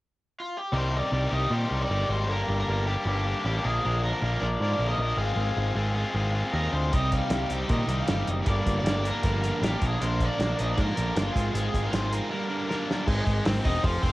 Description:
indie rock; 156 BPM; 4/4; straight; C minor; A4 = 439 Hz
overdriven semi-hollow guitar; melody; 0.4-14.1 s; F4 to G5; -32 LUFS; equal; cassette tape
distorted electric guitar; riff; 0.7-14.1 s; G2 to Bb4; -30 LUFS; left 2 dB; overdrive, cassette tape
overdriven picked electric bass; bass; 0.7-14.1 s; E1 to Bb2; -28 LUFS; equal
sludgy distorted guitar; riff; 6.9-14.1 s; G2 to Ab4; -33 LUFS; right 5 dB; overdrive, analog chorus, cassette tape
cloth-damped thuddy drum kit; drums; 6.9-14.1 s; crash cymbal, hi-hat, kick drum, snare drum; -28 LUFS; equal; cassette tape
light reverb; home recording on cassette; -24 LUFS; side -18 dB against mid
0.8-13.1 A section; 13.1-14.1 B section
drum fill 12.7-13.1
0.0 N.C.; 0.8 Cmadd9; 2.3 Gm; 3.7 Bb7; 5.2 Fm/Ab; 6.9 Cm; 8.5 Gm7; 9.8 Bb; 11.4 Fm7/Ab; 12.3 Gm7; 13.1 Ab

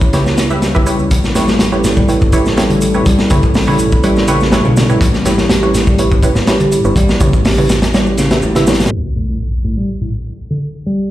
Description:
breakbeat, breaks; 123 BPM; 4/4; straight; A4 = 440 Hz
dark analog pad; sustained chords; 0.0-11.1 s; G3 to C#5; -18 LUFS; left 1 dB; chorus, vintage 12-bit sampler grit, sidechain pumping
fat analog bass; bass; 0.0-8.9 s; G1 to C#2; -17 LUFS; equal
crunchy breakbeat drum kit; drums; 0.0-8.9 s; hi-hat, kick drum, snare drum; -14 LUFS; equal
shaker; drums; 0.0-8.9 s; -30 LUFS; right 2 dB
filtered dub chord stab; stabs; 0.1-8.8 s; E4 to E5; -19 LUFS; right 2 dB; chorus, digital delay
congas; percussion; 0.1-8.9 s; -28 LUFS; right 1 dB
picked electric bass; riff; 1.4-11.1 s; A2 to G3; -18 LUFS; equal; tube saturation, low-pass filter, digital delay
impact; sound effects; 8.9-10.9 s; -20 LUFS; equal
moderate studio reverb, RT60 0.6 s; played on a big sound system in a bare room, stone room reverb, low-pass filter; -10 LUFS; side -14 dB against mid
0.0-8.9 A section; 8.9-11.1 B section
impact 8.9-10.9; filter sweep on picked electric bass 8.9-11.1; filter sweep 8.9-11.1
0.0 A7

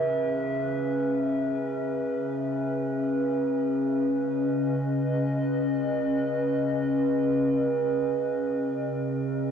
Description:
ambient; free time; A4 = 436 Hz
warbly tape-like pad; solo; 0.0-9.5 s; C#3 to E5; -24 LUFS; equal; chorus, built-in reverb, tape echo
wet cathedral reverb, RT60 5.4 s; worn, warbling old tape, cassette tape, warbly pitch drift; -24 LUFS; side -7 dB against mid
0.0-9.5 A section
0.0 C#m7; 3.3 B/C#

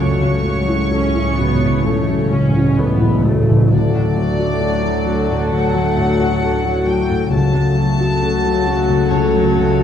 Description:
cinematic, emotional film score for orchestra; 64-67 BPM; 4/4; rubato; D major; A4 = 440 Hz
rich studio violin section; melody; 0.0-9.8 s; C#5 to C#6; -25 LUFS; left 1 dB
warm studio violin section; second line; 0.0-9.8 s; F#4 to C#5; -23 LUFS; left 2 dB
felt-muted upright piano; accompaniment; 0.0-9.8 s; C#2 to A4; -20 LUFS; left 3 dB
rich studio viola section; accompaniment; 0.0-9.8 s; F#3 to F#4; -24 LUFS; equal
concert harp; arpeggios; 0.0-9.8 s; C#3 to A4; -23 LUFS; left 10 dB
dark studio cello section; bass; 0.0-9.8 s; C#3 to D3; -23 LUFS; right 3 dB
dark studio double bass section; bass; 0.0-9.8 s; C#2 to D2; -23 LUFS; right 4 dB
timpani; percussion; 0.0-3.6 s; A2; -19 LUFS; right 2 dB
dark French horn section; sustained chords; 3.7-9.8 s; F#3 to F#4; -22 LUFS; left 3 dB
moderate recital hall reverb, RT60 1.5 s; dark, warm production; -14 LUFS; side -8 dB against mid
0.0-3.7 A section; 3.7-9.8 A section
timpani fill 0.0-3.7
0.0 A6/C#; 3.7 D; 7.3 F#m/C#

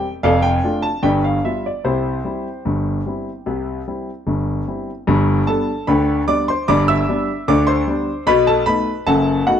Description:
ragtime piano; 75 BPM; 2/4; straight; C major, G major from 5.1 s; A4 = 440 Hz
clear concert grand piano; solo; 0.0-9.6 s; F1 to E6; -16 LUFS; left 1 dB
light reverb; dark, warm production; -16 LUFS; side -8 dB against mid
0.0-5.1 A section; 5.1-9.6 B section
0.2 Dm/F; 1.0 G7; 1.8 C; 5.1 G; 8.3 B7

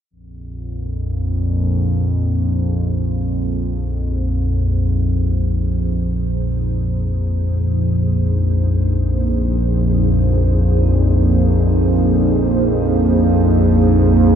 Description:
dark ambient drone; free time; A4 = 440 Hz
dark analog pad; sustained chords; 0.9-14.4 s; Bb3 to C5; -22 LUFS; right 2 dB; chorus, shimmer reverb
analog drone; drone; 0.4-14.4 s; Bb1 to F2; -15 LUFS; equal; chorus
wet cathedral reverb, RT60 7.7 s; dark, warm production; -15 LUFS; side -8 dB against mid
0.1-14.4 A section
fade-in on analog synth pad 0.1-14.4
0.1 Bbsus2

